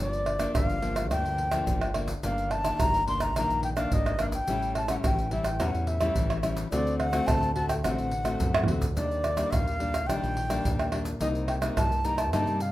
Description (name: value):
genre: samba and choro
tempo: 107 BPM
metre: 4/4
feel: straight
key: G minor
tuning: A4 = 438 Hz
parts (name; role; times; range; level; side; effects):
- baroque flute; melody; 0.0-12.7 s; D5 to C6; -30 LUFS; left 1 dB; none
- nylon-string guitar; accompaniment; 0.0-12.7 s; G2 to F#4; -32 LUFS; left 2 dB; none
- modern bright fingered electric bass; bass; 0.0-12.7 s; G1 to G2; -32 LUFS; equal; none
- egg shaker, pandeiro, tamborim and surdo; percussion; 0.1-12.7 s; none; -29 LUFS; right 2 dB; none
room: moderate large studio reverb, RT60 0.8 s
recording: minimal, uncompressed stereo recording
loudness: -25 LUFS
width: side -15 dB against mid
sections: 0.0-12.7 A section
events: drum fill 8.5-9.0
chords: 0.0 Gm7; 2.2 Ebmaj7/G; 4.5 A7; 6.7 D7; 9.0 Ebmaj7; 11.2 Cm7